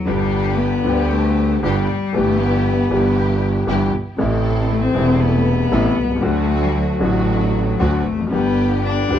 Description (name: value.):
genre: tango.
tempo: 116 BPM.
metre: 4/4.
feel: rubato.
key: G major.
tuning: A4 = 439 Hz.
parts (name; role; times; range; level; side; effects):
warm cello; second line; 0.0-9.2 s; F#3 to D4; -20 LUFS; left 4 dB; none.
warm grand piano; accompaniment; 0.1-9.2 s; E1 to B4; -20 LUFS; left 1 dB; none.
warm studio string section; stabs; 0.1-9.2 s; A3 to B4; -27 LUFS; right 2 dB; tape echo.
clear double bass; bass; 0.1-9.2 s; E1 to D2; -20 LUFS; right 2 dB; none.
room: light reverb.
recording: close, detailed microphones.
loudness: -15 LUFS.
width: side -10 dB against mid.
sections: 0.1-9.2 A section.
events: cello solo 0.1-9.2.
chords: 0.1 G; 2.2 Em/G; 4.2 Am; 6.2 D; 8.3 G.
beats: | 0.07 0.60 1.12 1.64 | 2.15 2.66 3.17 3.68 | 4.19 4.70 5.21 5.72 | 6.23 6.75 7.27 7.80 | 8.33 8.85.